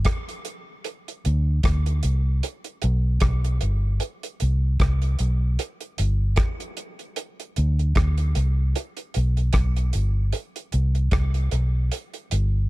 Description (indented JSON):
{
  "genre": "lovers rock reggae",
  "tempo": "76 BPM",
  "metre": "4/4",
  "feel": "swing 58% on 16ths",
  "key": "unclear",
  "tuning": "A4 = 445 Hz",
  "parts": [
    { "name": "vintage muted fingered electric bass", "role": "bass", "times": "0.0-12.7 s", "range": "G1 to D2", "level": "-20 LUFS", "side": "equal", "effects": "none" },
    { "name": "damped 70s drum kit", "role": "drums", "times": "0.0-12.5 s", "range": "hi-hat, kick drum, rim click", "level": "-25 LUFS", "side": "equal", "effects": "none" }
  ],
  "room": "little or no reverb",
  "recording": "dark, warm production",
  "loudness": "-21 LUFS",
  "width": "side -19 dB against mid",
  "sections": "0.0-12.7 A section",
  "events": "none",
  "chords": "none",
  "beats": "0.05 | 0.84 1.63 2.42 3.22 | 4.01 4.80 5.59 6.38 | 7.17 7.96 8.76 9.55 | 10.34 11.13 11.92"
}